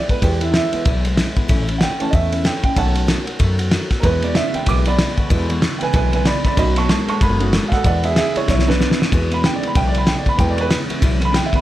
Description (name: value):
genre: rockabilly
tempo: 189 BPM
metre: 4/4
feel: swing 60% on 8ths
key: E major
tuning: A4 = 440 Hz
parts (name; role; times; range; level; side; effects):
- picked steel-string acoustic guitar; accompaniment; 0.0-11.6 s; E2 to F#4; -27 LUFS; left 4 dB; none
- warm upright piano; accompaniment; 0.0-11.6 s; D#3 to D6; -22 LUFS; right 3 dB; none
- upright bass; bass; 0.1-11.6 s; F#1 to F#2; -20 LUFS; equal; none
- cloth-damped thuddy drum kit; drums; 0.1-11.6 s; kick drum, ride cymbal, snare drum; -19 LUFS; equal; none
- electric guitar through a small old amp; riff; 4.0-11.6 s; E2 to G#3; -25 LUFS; right 2 dB; phaser
room: light reverb, small room ambience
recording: none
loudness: -15 LUFS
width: side -14 dB against mid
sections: 0.0-9.1 A section; 9.1-11.6 A section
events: upright piano solo 0.0-11.6; drum fill 8.5-9.1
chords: 0.0 E; 1.5 A; 2.8 B7; 4.0 E; 6.6 B7; 7.8 E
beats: | 0.23 0.54 0.86 1.18 | 1.50 1.81 2.13 2.45 | 2.77 3.08 3.40 3.72 | 4.03 4.35 4.67 4.99 | 5.30 5.62 5.94 6.26 | 6.57 6.89 7.21 7.53 | 7.84 8.16 8.48 8.80 | 9.11 9.43 9.75 10.07 | 10.39 10.70 11.02 11.34